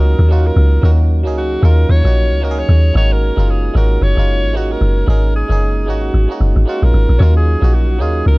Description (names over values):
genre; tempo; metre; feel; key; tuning
amapiano; 113 BPM; 4/4; swing 58% on 16ths; Eb minor; A4 = 444 Hz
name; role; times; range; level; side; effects
warm alto saxophone; melody; 0.0-8.4 s; Gb4 to Db5; -21 LUFS; equal; tape echo
barking FM electric piano; accompaniment; 0.0-8.4 s; Gb3 to Ab4; -21 LUFS; right 2 dB; chorus
deep log drum bass; bass; 0.0-8.4 s; Gb1 to Eb2; -12 LUFS; equal; none
room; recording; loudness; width
little or no reverb; dark, warm production; -11 LUFS; side -23 dB against mid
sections
0.0-8.4 A section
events
none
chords
0.0 Ebm7; 3.0 Ab9sus4; 7.2 Ebm7